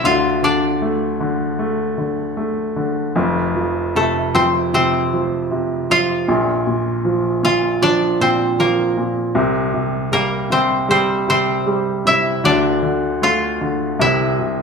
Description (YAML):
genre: pop ballad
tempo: 77 BPM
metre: 4/4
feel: straight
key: F major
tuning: A4 = 440 Hz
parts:
  - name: koto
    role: melody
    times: 0.0-14.6 s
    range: A3 to F5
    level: -18 LUFS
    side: left 1 dB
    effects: none
  - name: clear baby grand piano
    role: accompaniment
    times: 0.0-14.6 s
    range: F1 to A3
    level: -18 LUFS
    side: right 1 dB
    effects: none
room: moderate large studio reverb, RT60 1.2 s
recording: band playing live in one room, lossy compression artefacts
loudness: -15 LUFS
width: side -5 dB against mid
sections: 0.0-14.6 A section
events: none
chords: 0.0 Dm; 3.2 F; 6.3 Bb; 9.4 C; 12.4 Dm; 14.0 C